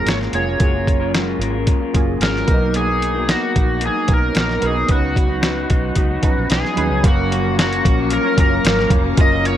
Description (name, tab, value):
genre	indie pop, bedroom pop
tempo	112 BPM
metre	4/4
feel	straight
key	F# major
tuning	A4 = 440 Hz
part	overdriven slide guitar	melody	0.0-9.6 s	F#4 to D#5	-21 LUFS	equal	analog chorus, tape echo
part	electric guitar through a small old amp	accompaniment	0.0-9.6 s	F#2 to A#4	-23 LUFS	left 5 dB	wide subtle chorus, warbly pitch drift
part	warm analog keys	accompaniment	0.0-9.6 s	E#3 to E#5	-24 LUFS	right 6 dB	chorus, cassette tape
part	vintage muted fingered electric bass	bass	0.1-9.6 s	E#1 to D#2	-23 LUFS	equal	none
part	lo-fi sampler-style drum kit	drums	0.1-9.6 s	hi-hat, kick drum, snare drum	-17 LUFS	equal	none
part	soft string machine	sustained chords	7.0-9.6 s	A#4 to D#6	-28 LUFS	left 1 dB	ensemble chorus
room	light reverb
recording	none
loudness	-15 LUFS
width	side -11 dB against mid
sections	0.0-7.0 A section; 7.0-9.6 B section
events	none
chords	0.0 F#maj9; 2.5 Bmaj7; 4.9 C#9sus4; 7.0 F#maj7